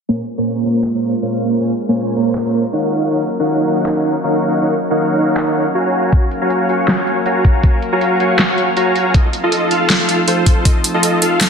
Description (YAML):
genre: future bass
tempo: 159 BPM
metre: 4/4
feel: swing 53% on 16ths, half-time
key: Bb minor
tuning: A4 = 439 Hz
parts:
  - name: airy breathy pad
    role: sustained chords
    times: 0.1-11.5 s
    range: F3 to F5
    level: -21 LUFS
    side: left 1 dB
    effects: chorus, sidechain pumping
  - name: dense compressed supersaw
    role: riff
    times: 0.1-11.5 s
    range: Bb3 to Db6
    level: -15 LUFS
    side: equal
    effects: sidechain pumping, low-pass filter, digital delay
  - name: big-room dance drum kit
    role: drums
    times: 0.8-11.5 s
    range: handclaps, hi-hat, snare drum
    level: -18 LUFS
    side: equal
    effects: overdrive
  - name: electronic kick drum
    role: drums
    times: 6.1-10.7 s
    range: none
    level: -12 LUFS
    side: equal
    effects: none
  - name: reverse cymbal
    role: sound effects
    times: 11.5 s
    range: none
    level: barely audible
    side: none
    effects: none
room: moderate lush hall reverb, RT60 1.9 s, digital ambience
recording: dense, heavily limited modern master, low-pass filter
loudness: -13 LUFS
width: side -6 dB against mid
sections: 0.1-11.5 A section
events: filter sweep 0.1-11.5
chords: 0.1 Bbm7; 2.9 Ebm7; 5.9 Gbmaj7; 9.1 F7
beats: | 0.09 0.47 0.84 1.22 | 1.60 1.97 2.35 2.73 | 3.11 3.48 3.86 4.24 | 4.62 4.99 5.37 5.75 | 6.12 6.50 6.88 7.26 | 7.63 8.01 8.39 8.77 | 9.14 9.52 9.90 10.28 | 10.65 11.03 11.41